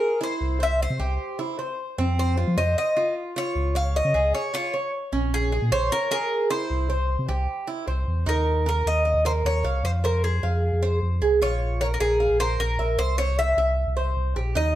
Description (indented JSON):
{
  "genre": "latin, Cuban son and guajira",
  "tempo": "153 BPM",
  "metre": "4/4",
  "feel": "straight",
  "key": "unclear",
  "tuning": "A4 = 440 Hz",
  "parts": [
    { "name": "Cuban tres", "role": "melody", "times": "0.0-14.8 s", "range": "Ab4 to F5", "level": "-25 LUFS", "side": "equal", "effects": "plate reverb" },
    { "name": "Cuban tres", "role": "arpeggios", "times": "0.0-14.8 s", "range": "C4 to F5", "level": "-28 LUFS", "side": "right 3 dB", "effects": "none" },
    { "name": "sub bass with octave", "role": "bass", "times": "0.4-14.8 s", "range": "Bb1 to F3", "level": "-24 LUFS", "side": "equal", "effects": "none" }
  ],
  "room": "moderate large studio reverb, RT60 0.9 s",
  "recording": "dark, warm production",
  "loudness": "-21 LUFS",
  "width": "side -13 dB against mid",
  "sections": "0.0-8.3 A section; 8.3-14.8 B section",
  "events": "none",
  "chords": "0.4 C; 2.0 F5; 3.6 Db; 5.1 Bbm7; 6.7 C; 8.3 Eb5; 9.8 Fm; 11.4 Bbm7; 13.0 C"
}